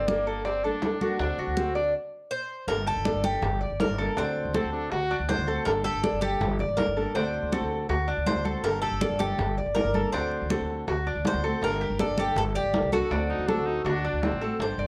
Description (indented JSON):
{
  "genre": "latin, Cuban son and guajira",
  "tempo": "161 BPM",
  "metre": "4/4",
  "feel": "straight",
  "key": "G harmonic minor",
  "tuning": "A4 = 441 Hz",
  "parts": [
    { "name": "bright trumpet", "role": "second line", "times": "0.0-1.9, 4.5-5.2, 13.3-14.6 s", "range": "Bb3 to F#4", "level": "-38 LUFS", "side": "equal", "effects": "none" },
    { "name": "nylon-string guitar", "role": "accompaniment", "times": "0.0-14.9 s", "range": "D3 to A4", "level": "-34 LUFS", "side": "equal", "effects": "none" },
    { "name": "Cuban tres", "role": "arpeggios", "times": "0.0-14.9 s", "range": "D4 to D5", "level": "-32 LUFS", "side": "equal", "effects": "none" },
    { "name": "upright bass", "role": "bass", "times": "0.0-14.9 s", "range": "G1 to D2", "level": "-34 LUFS", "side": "equal", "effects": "none" },
    { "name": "bongos", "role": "percussion", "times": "0.1-14.8 s", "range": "none", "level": "-37 LUFS", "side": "equal", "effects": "none" },
    { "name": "congas", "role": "percussion", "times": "0.1-14.9 s", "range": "none", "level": "-35 LUFS", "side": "equal", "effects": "none" },
    { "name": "Cuban tres", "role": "melody", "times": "2.3-14.9 s", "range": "F#4 to C5", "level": "-33 LUFS", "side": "equal", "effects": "none" }
  ],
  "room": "moderate studio reverb, RT60 0.8 s",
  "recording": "worn, warbling old tape, cassette tape, warbly pitch drift",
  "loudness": "-27 LUFS",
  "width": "mono",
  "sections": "0.0-2.7 A section; 2.7-14.6 B section",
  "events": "stop 1.9-2.7",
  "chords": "0.0 Gmadd9; 1.2 D7; 2.7 Gmadd9; 4.2 D7; 5.7 Gmadd9; 7.2 D7; 8.6 Gmadd9; 10.1 D7; 11.6 Gmadd9; 13.1 D7",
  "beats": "0.08 0.45 0.82 | 1.19 1.57 1.94 2.31 | 2.68 3.06 3.43 3.80 | 4.17 4.54 4.92 5.29 | 5.66 6.04 6.41 6.78 | 7.15 7.53 7.90 8.27 | 8.64 9.02 9.39 9.76 | 10.13 10.51 10.88 11.25 | 11.62 11.99 12.37 12.74 | 13.11 13.48 13.85 14.23 | 14.60"
}